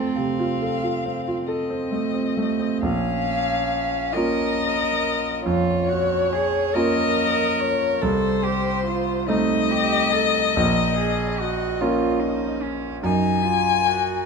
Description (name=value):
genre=classical, slow romantic movement for piano trio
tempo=44-49 BPM (dotted quarters)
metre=12/8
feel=rubato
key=Bb minor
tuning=A4 = 440 Hz
part: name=dark violin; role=melody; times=0.0-14.3 s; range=A4 to Ab5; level=-24 LUFS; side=left 8 dB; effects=none
part: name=warm cello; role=second line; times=0.0-14.3 s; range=C4 to Bb4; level=-26 LUFS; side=right 5 dB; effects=none
part: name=warm grand piano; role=accompaniment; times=0.0-14.3 s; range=Bb1 to A4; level=-23 LUFS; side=right 2 dB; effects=none
room=moderate large studio reverb, RT60 1.5 s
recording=minimal, uncompressed stereo recording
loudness=-20 LUFS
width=side -5 dB against mid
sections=0.0-2.8 A section; 2.8-14.3 B section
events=none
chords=0.0 F; 2.8 Bbm; 8.0 Adim/C; 10.6 Bbm; 13.0 Ebm/Gb